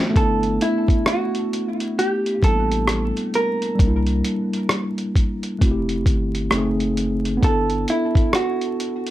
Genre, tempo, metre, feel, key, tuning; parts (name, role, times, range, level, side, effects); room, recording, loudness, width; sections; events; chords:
lo-fi hip hop; 66 BPM; 4/4; swing 60% on 16ths; G major; A4 = 440 Hz
tine electric piano; accompaniment; 0.0-9.1 s; G3 to A4; -23 LUFS; equal; fast stereo tremolo, cassette tape, low-pass filter
vintage hollow-body jazz guitar; melody; 0.2-9.1 s; E4 to Bb4; -23 LUFS; right 1 dB; low-pass filter, tape echo
soft dub sub bass; bass; 0.2-7.9 s; F1 to C2; -25 LUFS; equal
lo-fi sampler-style drum kit; drums; 0.2-9.1 s; hi-hat, kick drum, rim click; -20 LUFS; equal
moderate small room reverb, RT60 0.6 s; vinyl crackle; -18 LUFS; side -14 dB against mid
0.2-9.1 A section
drum fill 0.0
0.2 G69; 3.8 C9; 5.6 Fmaj9; 6.5 F#dim7; 7.4 G69